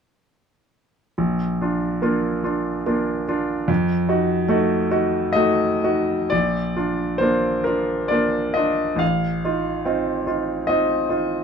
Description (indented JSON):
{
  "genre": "classical, romantic nocturne for solo piano",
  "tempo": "59-76 BPM",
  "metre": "3/4",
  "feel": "rubato",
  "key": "Bb major",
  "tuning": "A4 = 444 Hz",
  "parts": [
    { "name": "bright grand piano", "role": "solo", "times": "1.2-11.4 s", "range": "A1 to F5", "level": "-19 LUFS", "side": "equal", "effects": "none" }
  ],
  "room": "light reverb",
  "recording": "dark, warm production",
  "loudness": "-19 LUFS",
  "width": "side -6 dB against mid",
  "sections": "1.2-6.3 A section; 6.3-11.4 B section",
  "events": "none",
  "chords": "1.2 Bb; 3.7 F7b9; 6.3 Bb; 9.0 F7/A"
}